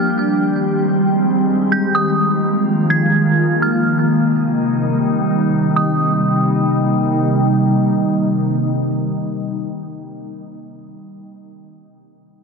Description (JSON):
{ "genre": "hip hop", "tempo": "free time", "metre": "none", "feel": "none", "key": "C minor", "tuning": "A4 = 440 Hz", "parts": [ { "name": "dark detuned synth bell", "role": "melody", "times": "0.0-7.2 s", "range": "Eb6 to Ab6", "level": "-22 LUFS", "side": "right 3 dB", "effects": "chorus, low-pass filter, digital delay" }, { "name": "glassy FM pad", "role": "sustained chords", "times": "0.0-10.0 s", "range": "C3 to G4", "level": "-15 LUFS", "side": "equal", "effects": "ensemble chorus, built-in reverb, low-pass filter" } ], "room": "light reverb", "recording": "dense, heavily limited modern master", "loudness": "-14 LUFS", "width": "side -4 dB against mid", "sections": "0.0-5.8 A section; 5.8-9.6 B section", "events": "none", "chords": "0.0 Abmaj7; 2.0 Bb7sus4; 3.9 Cm7" }